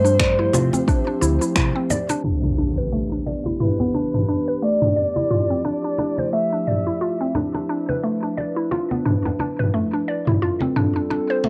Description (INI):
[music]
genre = organic downtempo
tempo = 88 BPM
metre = 4/4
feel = swing 57% on 16ths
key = unclear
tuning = A4 = 440 Hz
[part]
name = breathy flute-like synth lead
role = melody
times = 0.0-7.3 s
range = B4 to E5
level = -27 LUFS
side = equal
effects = subtle chorus, vintage 12-bit sampler grit, cassette tape, tape echo
[part]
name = warbly tape-like pad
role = sustained chords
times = 0.0-11.5 s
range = E3 to B4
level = -31 LUFS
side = equal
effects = chorus, built-in reverb, sidechain pumping, cassette tape
[part]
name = mallet-like synth pluck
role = arpeggios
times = 0.0-11.5 s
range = A3 to D5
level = -26 LUFS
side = equal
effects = chorus, cassette tape, tape echo
[part]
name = mellow fretless electric bass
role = bass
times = 0.0-1.7 s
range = D2 to C3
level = -23 LUFS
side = equal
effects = lush chorus, sidechain pumping
[part]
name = deep house drum kit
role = drums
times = 0.1-11.4 s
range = finger snaps, shaker, toms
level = -26 LUFS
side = equal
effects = overdrive, low-pass filter on perc, low-pass filter on snare, low-pass filter on toms, low-pass filter on room
[part]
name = electronic kick drum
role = drums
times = 0.2-1.7 s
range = none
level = -23 LUFS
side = equal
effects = overdrive
[part]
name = congas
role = percussion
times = 0.2-11.5 s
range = none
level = -31 LUFS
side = equal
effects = none
[part]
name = impact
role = sound effects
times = 2.2-5.0 s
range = none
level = -27 LUFS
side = equal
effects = none
[sound]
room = moderate booth ambience, RT60 0.3 s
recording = home recording on cassette, low-pass filter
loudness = -21 LUFS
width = mono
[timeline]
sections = 0.0-2.2 A section; 2.2-11.5 B section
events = filter sweep on synth pluck 0.0-2.2, 2.2-11.5; band accent 1.6-1.9; impact 2.2-5.0; filter sweep 2.2-11.5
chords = 0.0 G9sus4; 2.2 Em7; 5.0 Fmaj9; 7.7 Dm69; 10.4 G9sus4